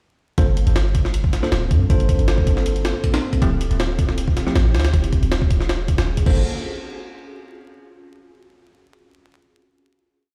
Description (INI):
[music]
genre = drum and bass, jungle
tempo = 158 BPM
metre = 4/4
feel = straight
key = G dorian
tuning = A4 = 441 Hz
[part]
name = ethereal airy pad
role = sustained chords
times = 1.2-6.4 s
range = Bb3 to A4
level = -34 LUFS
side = equal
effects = ensemble chorus, built-in reverb, vintage 12-bit sampler grit
[part]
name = bell-like tine electric piano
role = stabs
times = 0.4-6.4 s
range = F3 to C5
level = -30 LUFS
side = equal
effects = dub echo
[part]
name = warm 808-style bass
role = bass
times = 0.4-6.4 s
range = D1 to G2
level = -22 LUFS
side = equal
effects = none
[part]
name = jungle sampler-style drum kit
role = drums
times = 0.4-6.3 s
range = crash cymbal, hi-hat, kick drum, snare drum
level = -22 LUFS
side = equal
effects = studio reverb
[sound]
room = little or no reverb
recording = played on a big sound system in a bare room, stone room reverb, vinyl crackle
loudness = -19 LUFS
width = mono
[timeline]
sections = 0.4-6.5 drop; 6.5-8.0 final hit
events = drop 0.4-6.5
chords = 0.4 Gm11; 3.4 Dm11; 4.9 Ebm11; 6.3 Gm11; 6.5 N.C.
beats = | 0.38 0.76 1.14 1.52 | 1.90 2.28 2.66 3.04 | 3.42 3.80 4.18 4.56 | 4.94 5.32 5.70 6.08